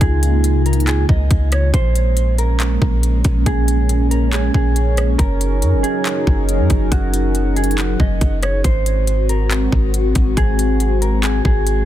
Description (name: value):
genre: hip hop, atmospheric cloud-rap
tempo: 139 BPM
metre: 4/4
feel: half-time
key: Bb minor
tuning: A4 = 441 Hz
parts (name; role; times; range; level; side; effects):
- mellow electric guitar; melody; 0.0-11.8 s; Gb4 to Eb5; -24 LUFS; right 2 dB; tape echo
- dark analog pad; sustained chords; 0.0-11.8 s; Db3 to Bb4; -21 LUFS; equal; chorus, phaser, sidechain pumping
- warm 808-style bass; bass; 0.0-11.8 s; Gb1 to Gb2; -16 LUFS; equal; none
- trap drum kit; drums; 0.0-11.8 s; handclaps, hi-hat, kick drum, rim click; -19 LUFS; equal; none
room: digital ambience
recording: dense, heavily limited modern master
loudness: -14 LUFS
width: side -12 dB against mid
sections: 0.0-1.7 A section; 1.7-11.8 A section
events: none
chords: 0.0 Db6; 1.7 Bbm7; 5.2 Gb6; 8.6 Ab7